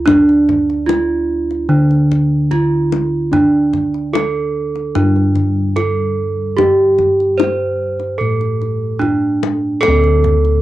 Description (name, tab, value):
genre	Javanese gamelan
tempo	74 BPM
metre	4/4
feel	straight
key	D slendro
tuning	A4 = 440 Hz
part	gamelan-type bronze metallophone	melody	0.0-10.6 s	D4 to C5-25c	-16 LUFS	right 4 dB	cassette tape
part	gamelan-type bossed gongs	bass	0.0-10.6 s	D2 to A4	-15 LUFS	left 1 dB	transformer saturation
part	kendang	percussion	0.1-10.5 s	none	-22 LUFS	left 8 dB	none
room	moderate booth ambience, RT60 0.2 s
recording	home recording on cassette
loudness	-13 LUFS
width	side -15 dB against mid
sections	0.0-9.8 A section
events	none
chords	none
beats	| 0.07 0.88 1.70 2.51 | 3.32 4.13 4.95 5.76 | 6.57 7.39 8.20 9.01 | 9.83